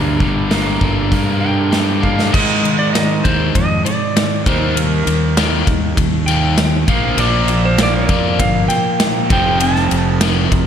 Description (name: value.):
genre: classic rock.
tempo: 99 BPM.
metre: 4/4.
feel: straight.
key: unclear.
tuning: A4 = 442 Hz.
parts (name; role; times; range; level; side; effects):
overdriven electric guitar; riff; 0.0-10.7 s; F2 to D4; -21 LUFS; left 8 dB; slapback echo.
overdriven semi-hollow guitar; riff; 0.0-10.7 s; F2 to Eb4; -21 LUFS; right 8 dB; slapback echo.
fuzz fingered electric bass; bass; 0.0-10.7 s; F1 to Ab2; -19 LUFS; equal; overdrive.
big rock drum kit; drums; 0.2-10.7 s; crash cymbal, hi-hat, kick drum, ride cymbal, snare drum; -18 LUFS; equal; none.
clean lap steel guitar; melody; 1.4-10.7 s; Bb4 to A5; -20 LUFS; right 2 dB; slapback echo.
overdriven electric guitar; riff; 7.2-10.7 s; F2 to Bb3; -22 LUFS; equal; slapback echo.
room: moderate concert hall reverb, RT60 1.9 s, small room ambience.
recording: big arena sound.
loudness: -13 LUFS.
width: side -8 dB against mid.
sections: 0.0-2.3 A section; 2.3-10.7 B section.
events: drum fill 2.0-2.3.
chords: 0.0 Gm; 2.3 Ab5; 4.5 Eb; 6.9 Bb5; 9.3 F.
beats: 0.50 1.11 1.72 | 2.33 2.94 3.54 4.15 | 4.76 5.37 5.97 6.58 | 7.19 7.79 8.40 9.01 | 9.62 10.22.